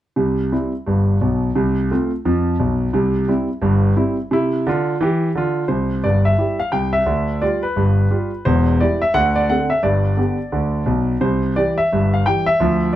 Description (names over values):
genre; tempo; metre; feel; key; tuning
jazz, stride piano; 174 BPM; 4/4; swing 62% on 8ths; C major; A4 = 440 Hz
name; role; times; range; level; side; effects
warm concert grand piano; solo; 0.2-13.0 s; E1 to G5; -16 LUFS; equal; none
room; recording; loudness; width
moderate studio ambience, RT60 0.5 s; dark, warm production; -16 LUFS; side -13 dB against mid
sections
0.2-5.7 A section; 5.7-13.0 B section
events
none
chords
0.2 C; 1.6 F/C; 2.9 C; 4.3 F5/C; 5.7 C; 7.1 G7/D; 8.5 C/E; 9.1 D5; 9.8 G; 11.2 C